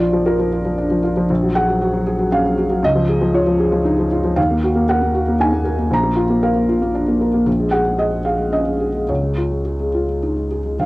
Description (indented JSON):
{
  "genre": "neoclassical piano and strings",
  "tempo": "116 BPM",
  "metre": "3/4",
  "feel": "rubato",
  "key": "unclear",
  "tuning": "A4 = 441 Hz",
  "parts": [
    { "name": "felt-muted upright piano", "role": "accompaniment", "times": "0.0-10.9 s", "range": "Bb1 to Bb5", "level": "-16 LUFS", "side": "equal", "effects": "none" },
    { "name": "pure sine sub bass", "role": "bass", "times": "0.0-10.8 s", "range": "Bb1 to Eb2", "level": "-26 LUFS", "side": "equal", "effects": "transformer saturation" }
  ],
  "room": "little or no reverb",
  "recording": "home recording on cassette",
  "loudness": "-15 LUFS",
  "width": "side -20 dB against mid",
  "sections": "0.0-10.8 A section",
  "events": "none",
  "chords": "0.0 Bb; 1.3 Gbadd9/Bb; 2.8 Dbadd9; 4.4 Ebmadd9; 5.9 Bb; 7.5 Gbmaj13/Bb; 9.1 Dbadd9"
}